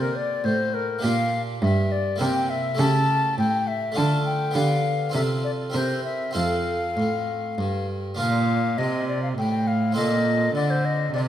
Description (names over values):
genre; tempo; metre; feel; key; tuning
classical, baroque-style sonata movement with continuo; 102 BPM; 3/4; straight; F major, Bb major from 8.2 s; A4 = 438 Hz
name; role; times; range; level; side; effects
bright baroque flute; melody; 0.0-11.2 s; Bb4 to A5; -26 LUFS; left 4 dB; none
harpsichord; accompaniment; 0.0-11.3 s; F2 to Bb4; -27 LUFS; right 2 dB; none
rich cello; bass; 0.0-11.3 s; F2 to D3; -25 LUFS; right 2 dB; none
room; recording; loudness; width
wet recital hall reverb, RT60 1.6 s; none; -21 LUFS; side -11 dB against mid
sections
0.0-8.2 A section; 8.2-11.3 A section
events
none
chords
0.0 Bb; 1.0 Gm/Bb; 2.2 C7; 2.8 A7/C#; 4.0 Dm; 4.6 G7/D; 5.1 F/C; 5.7 C7; 6.4 F; 8.2 Bb; 10.0 F7/Bb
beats
0.45 | 1.04 1.62 2.21 | 2.79 3.38 3.97 | 4.55 5.14 5.74 | 6.35 6.97 7.58 | 8.19 8.78 9.37 | 9.96 10.55 11.13